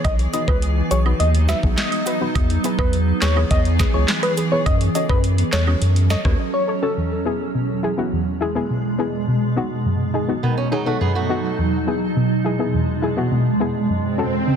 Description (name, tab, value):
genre	dancehall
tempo	104 BPM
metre	4/4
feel	straight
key	E major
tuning	A4 = 441 Hz
part	soft struck synth lead	melody	0.0-6.9 s	A4 to E5	-25 LUFS	left 2 dB	chorus, digital delay
part	soft round pluck	accompaniment	0.0-14.6 s	E2 to D#5	-23 LUFS	left 2 dB	chorus, sidechain pumping
part	granular cloud pad	sustained chords	0.0-14.6 s	E2 to A4	-23 LUFS	right 2 dB	built-in reverb, sidechain pumping
part	saturated sub bass	bass	0.0-6.4 s	B1 to F#2	-18 LUFS	equal	none
part	afro-pop drum kit	drums	0.0-6.4 s	handclaps, hi-hat, kick drum, rim click, snare drum	-22 LUFS	equal	vintage 12-bit sampler grit
part	woodblock and cabasa	percussion	0.0-6.2 s	none	-33 LUFS	right 11 dB	none
part	fingerpicked swing-style acoustic guitar	arpeggios	10.4-11.6 s	D#3 to G#4	-26 LUFS	right 6 dB	digital delay
part	swell	sound effects	14.1-14.6 s	none	-23 LUFS	right 5 dB	none
room	light reverb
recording	dense, heavily limited modern master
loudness	-17 LUFS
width	side -7 dB against mid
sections	0.0-7.0 A section; 7.0-14.6 B section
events	break 6.4-7.0; swell 14.1-14.6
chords	0.0 B; 2.4 E; 4.7 F#m; 7.0 E; 9.3 B; 11.6 E; 13.9 F#m